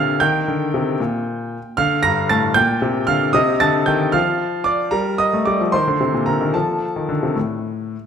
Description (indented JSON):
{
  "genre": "classical-period piano sonatina",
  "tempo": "76 BPM (dotted quarters)",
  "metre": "6/8",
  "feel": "straight",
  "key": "unclear",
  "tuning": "A4 = 440 Hz",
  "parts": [
    { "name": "warm concert grand piano", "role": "solo", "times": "0.0-7.9 s", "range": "G2 to Bb6", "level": "-16 LUFS", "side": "equal", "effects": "none" }
  ],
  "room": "wet recital hall reverb, RT60 1.3 s",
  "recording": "none",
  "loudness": "-16 LUFS",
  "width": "side -7 dB against mid",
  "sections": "0.0-8.1 A section",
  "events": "none",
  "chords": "0.2 Eb; 1.8 Bb; 2.6 Gm/Bb; 3.4 Cm; 4.1 Dm/F; 4.9 Gm; 5.7 Eb5; 6.5 F",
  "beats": "| 0.20 0.99 | 1.78 2.56 | 3.35 4.14 | 4.93 5.73 | 6.54 7.36"
}